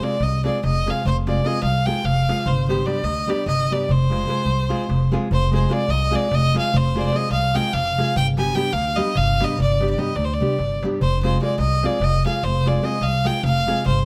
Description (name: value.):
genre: balkan folk, Balkan wedding band.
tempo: 295 BPM (eighths).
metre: 7/8.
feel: straight.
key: F dorian sharp4.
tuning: A4 = 439 Hz.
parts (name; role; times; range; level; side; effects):
clear violin; melody; 0.0-14.1 s; C5 to Ab5; -25 LUFS; equal; none.
nylon-string guitar; accompaniment; 0.0-13.8 s; G3 to Ab4; -28 LUFS; equal; none.
darbuka; percussion; 0.0-14.0 s; none; -27 LUFS; equal; none.
upright bass; bass; 0.2-14.1 s; F1 to D2; -26 LUFS; equal; none.
room: moderate recital hall reverb, RT60 1.3 s.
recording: close, detailed microphones.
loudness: -20 LUFS.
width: mono.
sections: 0.0-5.3 A section; 5.3-14.1 A section.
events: drum fill 10.4-11.0.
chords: 0.0 Fm; 2.5 G; 3.9 Fm; 8.2 G; 11.0 Fm.